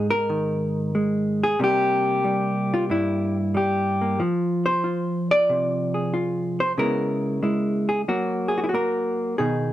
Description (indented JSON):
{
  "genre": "solo jazz",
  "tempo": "92 BPM",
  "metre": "4/4",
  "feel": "swing 69% on 8ths",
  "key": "unclear",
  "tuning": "A4 = 440 Hz",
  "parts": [
    { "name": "hollow-body jazz guitar", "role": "solo", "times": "0.0-9.7 s", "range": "G2 to D5", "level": "-21 LUFS", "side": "equal", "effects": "none" }
  ],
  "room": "light reverb",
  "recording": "none",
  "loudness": "-21 LUFS",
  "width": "side -13 dB against mid",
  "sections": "0.0-9.7 A section",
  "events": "none",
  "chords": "0.0 Ab; 1.6 C7; 4.2 Fm; 6.8 Dbm7; 8.1 Gb",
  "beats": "0.30 0.95 | 1.60 2.25 2.90 3.54 | 4.20 4.84 5.49 6.14 | 6.79 7.44 8.09 8.74 | 9.39"
}